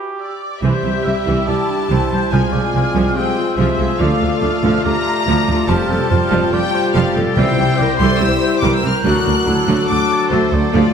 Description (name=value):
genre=cinematic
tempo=143 BPM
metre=4/4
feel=straight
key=C mixolydian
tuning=A4 = 440 Hz
part: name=mellow clarinet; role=second line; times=0.0-10.8 s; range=D4 to C5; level=-25 LUFS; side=equal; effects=none
part: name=mellow cor anglais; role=second line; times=0.0-10.9 s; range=G4 to E5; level=-25 LUFS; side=right 2 dB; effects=none
part: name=mellow hollow flute section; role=second line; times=0.0-10.9 s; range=B5 to A6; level=-26 LUFS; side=left 2 dB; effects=none
part: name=rich symphonic violin section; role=melody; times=0.2-10.9 s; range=C5 to F#6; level=-22 LUFS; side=left 5 dB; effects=none
part: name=bright symphonic violin section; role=second line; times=0.6-10.9 s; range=C4 to C5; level=-27 LUFS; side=left 3 dB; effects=none
part: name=clear symphonic viola section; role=accompaniment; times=0.6-10.9 s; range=E3 to E4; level=-23 LUFS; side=right 2 dB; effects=none
part: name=warm French horn section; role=sustained chords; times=0.6-10.9 s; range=F#3 to G4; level=-21 LUFS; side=left 3 dB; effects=none
part: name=clear symphonic double bass section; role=bass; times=0.6-10.8 s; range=F1 to D2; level=-21 LUFS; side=right 3 dB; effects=none
part: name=rich symphonic cello section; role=bass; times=0.6-10.8 s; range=C2 to F2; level=-20 LUFS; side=right 3 dB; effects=none
part: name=timpani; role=percussion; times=7.4-8.0 s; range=C3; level=-21 LUFS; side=left 3 dB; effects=none
room=wet scoring stage reverb, RT60 2.2 s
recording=none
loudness=-13 LUFS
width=side -7 dB against mid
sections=0.6-10.9 A section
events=none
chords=0.0 G; 0.6 C; 2.3 Fm/C; 4.0 Dm; 5.7 Fadd9; 7.4 C; 9.1 D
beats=0.20 | 0.63 1.05 1.48 1.91 | 2.33 2.75 3.17 3.59 | 4.01 4.43 4.85 5.27 | 5.69 6.11 6.53 6.95 | 7.37 7.79 8.21 8.63 | 9.05 9.47 9.89 10.32 | 10.74